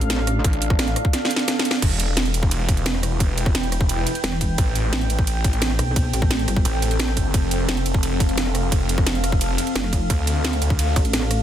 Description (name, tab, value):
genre	dark technical drum and bass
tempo	174 BPM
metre	4/4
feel	straight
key	E phrygian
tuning	A4 = 440 Hz
part	deep dark ambient pad	sustained chords	0.0-11.4 s	C4 to G5	-27 LUFS	equal	chorus, built-in reverb, sidechain pumping
part	pulsing pluck wobble bass	bass	0.0-0.4, 4.2-6.6, 9.8-11.4 s	E1 to B1	-22 LUFS	equal	chorus
part	drum and bass drum kit	drums	0.0-11.4 s	crash cymbal, hi-hat, ride cymbal, rim click, snare drum	-24 LUFS	right 2 dB	overdrive
part	snarling distorted saw bass	bass	0.4-10.9 s	E1 to D2	-23 LUFS	equal	distortion, overdrive, sidechain pumping
part	electronic kick drum	drums	0.4-11.0 s	none	-20 LUFS	equal	overdrive
room	little or no reverb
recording	dense, heavily limited modern master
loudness	-18 LUFS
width	side -10 dB against mid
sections	0.0-11.4 A section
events	drum fill 1.1-1.8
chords	0.0 Dm; 1.8 Em; 4.6 Am7; 7.3 F; 10.1 Dm